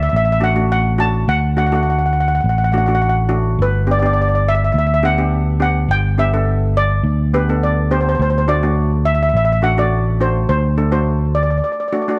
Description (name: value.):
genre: calypso.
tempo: 104 BPM.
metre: 4/4.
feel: straight.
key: G major.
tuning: A4 = 442 Hz.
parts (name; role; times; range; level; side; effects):
steel pan; melody; 0.0-12.2 s; B4 to A5; -21 LUFS; equal; analog delay.
fingered electric bass; bass; 0.0-11.6 s; G1 to D2; -19 LUFS; equal; none.
steel pan; accompaniment; 0.4-12.2 s; A3 to A4; -25 LUFS; equal; none.
room: moderate recital hall reverb, RT60 1.7 s, studio ambience.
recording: none.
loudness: -16 LUFS.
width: mono.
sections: 0.0-12.2 A section.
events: break 11.6-12.2.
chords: 0.0 D; 3.6 G; 8.2 D.